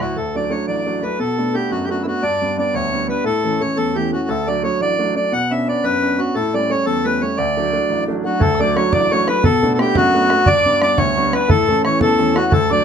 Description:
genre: celtic folk, Celtic jig.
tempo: 116 BPM (dotted quarters).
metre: 6/8.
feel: straight.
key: D major.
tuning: A4 = 438 Hz.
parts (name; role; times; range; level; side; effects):
accordion; melody; 0.0-12.8 s; E4 to F#5; -18 LUFS; left 1 dB; none.
concert harp; second line; 0.0-1.0 s; none; barely audible; none; none.
clear grand piano; accompaniment; 0.0-12.8 s; A1 to D4; -20 LUFS; right 1 dB; none.
bodhran; percussion; 0.0-0.1, 8.4-12.7 s; none; -20 LUFS; right 1 dB; none.
mellow hollow wooden whistle; second line; 8.2-12.8 s; F#5 to E6; -25 LUFS; left 2 dB; none.
room: moderate small room ambience, RT60 0.5 s.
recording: none.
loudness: -15 LUFS.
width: side -7 dB against mid.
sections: 0.2-8.4 A section; 8.4-12.8 A section.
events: none.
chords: 0.2 D; 1.2 Bm7; 2.2 G; 3.3 A; 4.3 D; 5.3 Bmadd9; 6.4 A7; 7.4 D; 9.4 Bm7; 10.5 G; 11.5 A.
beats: | 0.16 0.67 | 1.19 1.71 | 2.22 2.74 | 3.26 3.77 | 4.29 4.81 | 5.32 5.84 | 6.35 6.87 | 7.38 7.90 | 8.41 8.93 | 9.44 9.95 | 10.47 10.98 | 11.49 12.01 | 12.52.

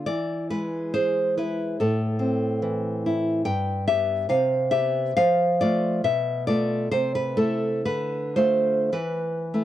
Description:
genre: romantic piece for solo classical guitar.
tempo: 51-74 BPM.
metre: 2/4.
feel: rubato.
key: A minor.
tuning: A4 = 440 Hz.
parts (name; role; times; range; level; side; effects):
nylon-string guitar; solo; 0.0-9.6 s; G2 to G5; -22 LUFS; equal; none.
room: small room ambience.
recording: dry, close 1970s-style studio recording.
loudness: -22 LUFS.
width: side -12 dB against mid.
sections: 0.0-9.6 A section.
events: none.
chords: 0.1 E; 1.8 Am; 3.5 G; 4.3 Cmaj7; 5.2 F; 6.0 Bm7b5; 6.9 Am/C; 7.8 Dm; 8.9 Esus4.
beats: | 0.09 0.96 | 1.80 2.63 | 3.46 4.30 | 5.16 6.04 | 6.91 7.84 | 8.92.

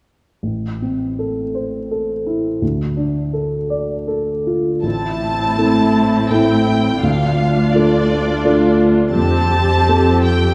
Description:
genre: cinematic.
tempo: 83 BPM.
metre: 3/4.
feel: rubato.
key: A minor.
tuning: A4 = 439 Hz.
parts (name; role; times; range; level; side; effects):
dark baby grand piano; accompaniment; 0.4-10.5 s; A1 to D5; -20 LUFS; equal; none.
rich studio violin section; melody; 4.8-10.5 s; D5 to A5; -23 LUFS; equal; none.
rich studio viola section; accompaniment; 4.8-10.5 s; C4 to G4; -23 LUFS; equal; none.
warm studio cello section; bass; 4.8-10.5 s; D2 to A2; -21 LUFS; equal; none.
room: wet scoring stage reverb, RT60 2.0 s.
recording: heard from further back in the room.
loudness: -17 LUFS.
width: mono.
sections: 0.4-4.8 A section; 4.8-10.5 B section.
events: none.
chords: 0.4 Am; 2.6 Dm; 4.8 Am; 7.0 Dm; 9.2 Fadd9.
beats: | 0.43 1.18 1.91 | 2.62 3.34 4.08 | 4.84 5.58 6.31 | 7.03 7.75 8.45 | 9.16 9.89.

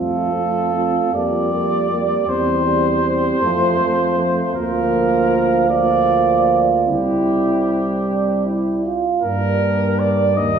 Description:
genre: classical, brass quintet.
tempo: 52 BPM (dotted quarters).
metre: 6/8.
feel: rubato.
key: unclear.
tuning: A4 = 440 Hz.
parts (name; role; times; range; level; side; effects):
warm trumpet; melody; 0.0-10.6 s; G4 to Eb5; -22 LUFS; left 2 dB; none.
dark flugelhorn; second line; 0.0-10.6 s; D4 to A4; -20 LUFS; right 6 dB; none.
clear trombone; accompaniment; 0.0-10.6 s; F3 to A3; -24 LUFS; right 4 dB; none.
warm French horn; accompaniment; 0.0-10.6 s; A3 to C4; -24 LUFS; left 1 dB; none.
mellow bass trombone; bass; 0.0-10.6 s; C2 to G2; -23 LUFS; equal; none.
room: wet recital hall reverb, RT60 1.8 s.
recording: recorded in a church or concert hall, small room ambience.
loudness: -15 LUFS.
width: side -7 dB against mid.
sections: 0.0-10.6 A section.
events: none.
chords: 0.0 F; 1.1 Gm7/F; 2.3 C/E; 3.4 F; 4.6 Bb/D; 6.9 C; 9.2 Gm.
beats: 1.14 | 2.29 3.42 | 4.56 5.70 | 6.88 8.05 | 9.23 10.38.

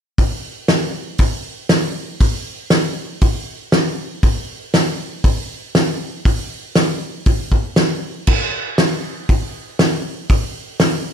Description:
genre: rock.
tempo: 119 BPM.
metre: 4/4.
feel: straight.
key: none.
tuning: none.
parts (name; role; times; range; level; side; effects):
loose indie drum kit; drums; 0.2-10.9 s; crash cymbal, hi-hat, kick drum, snare drum; -16 LUFS; equal; none.
room: light reverb.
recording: none.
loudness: -16 LUFS.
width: side -8 dB against mid.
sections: 0.2-11.1 A section.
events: none.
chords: none.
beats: | 0.19 0.70 1.20 1.71 | 2.21 2.72 3.22 3.73 | 4.24 4.74 5.25 5.75 | 6.26 6.76 7.27 7.78 | 8.28 8.79 9.29 9.80 | 10.30 10.81.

